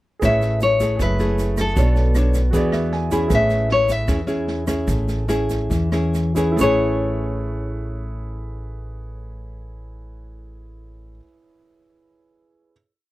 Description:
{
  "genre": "bossa nova",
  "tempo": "132-156 BPM",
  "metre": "4/4",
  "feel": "straight",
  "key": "A major",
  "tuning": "A4 = 440 Hz",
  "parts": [
    { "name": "nylon-string guitar", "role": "melody", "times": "0.2-11.2 s", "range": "A4 to E5", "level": "-21 LUFS", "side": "left 2 dB", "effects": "none" },
    { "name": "nylon-string guitar", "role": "accompaniment", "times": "0.2-11.3 s", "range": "E3 to C#5", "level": "-23 LUFS", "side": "left 1 dB", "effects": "none" },
    { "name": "warm baby grand piano", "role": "accompaniment", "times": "0.2-12.7 s", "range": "E4 to B5", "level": "-29 LUFS", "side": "right 4 dB", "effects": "none" },
    { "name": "upright bass", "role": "bass", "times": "0.2-11.2 s", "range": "F#1 to E2", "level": "-23 LUFS", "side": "equal", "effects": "none" },
    { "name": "open jazz drum kit", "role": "drums", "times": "0.2-6.4 s", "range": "kick drum, rim click, snare drum", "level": "-28 LUFS", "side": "right 1 dB", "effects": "none" },
    { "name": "egg shaker", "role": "percussion", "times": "0.2-6.7 s", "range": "none", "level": "-39 LUFS", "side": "right 11 dB", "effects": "none" }
  ],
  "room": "little or no reverb",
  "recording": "dry, close 1970s-style studio recording",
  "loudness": "-17 LUFS",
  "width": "side -17 dB against mid",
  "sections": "0.2-6.6 A section; 6.6-10.2 final chord",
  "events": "grand piano fill 2.5-3.3; slowing down 3.3-6.6",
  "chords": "0.2 Amaj7; 1.0 F#m9; 1.8 Bm9; 2.5 E7; 3.3 Amaj7"
}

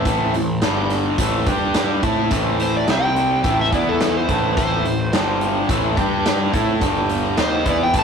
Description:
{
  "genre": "blues rock power trio and southern rock",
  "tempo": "106 BPM",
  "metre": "4/4",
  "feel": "straight",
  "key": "A minor",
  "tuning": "A4 = 440 Hz",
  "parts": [
    { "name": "tonewheel organ", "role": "sustained chords", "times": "0.0-8.0 s", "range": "E3 to D5", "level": "-31 LUFS", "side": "right 3 dB", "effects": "none" },
    { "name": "overdriven electric guitar", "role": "riff", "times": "0.0-8.0 s", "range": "G2 to A4", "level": "-20 LUFS", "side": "equal", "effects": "none" },
    { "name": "fuzz picked electric bass", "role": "bass", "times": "0.0-8.0 s", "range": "G1 to A2", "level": "-23 LUFS", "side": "equal", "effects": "overdrive" },
    { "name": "raw garage drum kit", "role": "drums", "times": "0.1-8.0 s", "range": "hi-hat, kick drum, snare drum", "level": "-22 LUFS", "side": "right 1 dB", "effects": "none" },
    { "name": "overdriven slide guitar", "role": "melody", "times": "2.6-8.0 s", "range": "A4 to A5", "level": "-22 LUFS", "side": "equal", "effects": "slapback echo" }
  ],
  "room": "moderate small room reverb, RT60 0.5 s",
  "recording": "rough rehearsal-room recording, tube saturation",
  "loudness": "-16 LUFS",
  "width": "side -6 dB against mid",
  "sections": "0.0-8.0 A section",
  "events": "none",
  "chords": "0.0 Am; 0.6 G5; 1.2 Am; 1.5 G5; 2.0 Am; 2.9 C5; 3.4 Am; 3.7 E5; 4.3 Am; 5.1 G5; 5.7 Am; 6.0 G5; 6.5 Am; 6.8 G5; 7.4 Am"
}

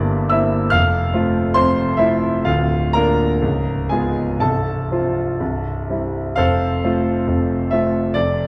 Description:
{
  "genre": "classical, romantic character piece for solo piano",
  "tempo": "59-73 BPM",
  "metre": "2/4",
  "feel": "rubato",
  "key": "F major",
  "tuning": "A4 = 440 Hz",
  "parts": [
    { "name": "clear concert grand piano", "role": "solo", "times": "0.0-8.5 s", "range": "C1 to F6", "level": "-19 LUFS", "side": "equal", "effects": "none" }
  ],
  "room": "wet recital hall reverb, RT60 1.4 s",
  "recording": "dark, warm production",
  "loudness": "-19 LUFS",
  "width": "mono",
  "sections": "0.0-6.4 A section; 6.4-8.5 B section",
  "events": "none",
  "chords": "0.0 C7/G; 0.7 F; 2.5 Bb/D; 3.4 Db7; 4.4 F/C; 5.4 C; 6.4 F"
}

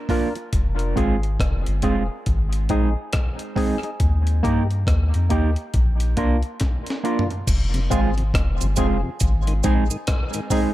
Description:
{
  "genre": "dub reggae",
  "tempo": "69 BPM",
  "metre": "4/4",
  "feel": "swing 62% on 16ths",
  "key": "F dorian",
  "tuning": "A4 = 440 Hz",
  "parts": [
    { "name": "mellow electric guitar", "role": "accompaniment", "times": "0.1-10.7 s", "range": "Ab3 to Bb4", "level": "-26 LUFS", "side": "right 7 dB", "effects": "tape echo" },
    { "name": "percussive organ stab", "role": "stabs", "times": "0.1-10.7 s", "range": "Bb3 to Bb4", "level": "-29 LUFS", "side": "left 5 dB", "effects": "chorus, tape echo" },
    { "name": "breakbeat sampler-style drum kit", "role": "drums", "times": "0.1-10.7 s", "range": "crash cymbal, hi-hat, kick drum, rim click, snare drum, toms", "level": "-23 LUFS", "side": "equal", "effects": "none" },
    { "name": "soft dub sub bass", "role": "bass", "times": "0.5-9.9 s", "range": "F1 to G2", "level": "-21 LUFS", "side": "equal", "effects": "none" },
    { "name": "cabasa", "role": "percussion", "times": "7.5-10.7 s", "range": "none", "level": "-32 LUFS", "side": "right 10 dB", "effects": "tape echo" },
    { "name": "tonewheel organ", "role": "accompaniment", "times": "7.7-10.6 s", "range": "F2 to F4", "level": "-30 LUFS", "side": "left 2 dB", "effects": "stopped rotary speaker, tape echo" }
  ],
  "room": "light reverb, digital ambience",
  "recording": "none",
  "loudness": "-19 LUFS",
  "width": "side -15 dB against mid",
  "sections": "0.0-7.5 A section; 7.5-10.7 B section",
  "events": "drum fill 6.6-7.5",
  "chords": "0.0 Bb; 0.5 Fm; 2.3 Ab; 4.0 Eb; 5.7 Bb; 7.5 Fm; 9.2 Ab"
}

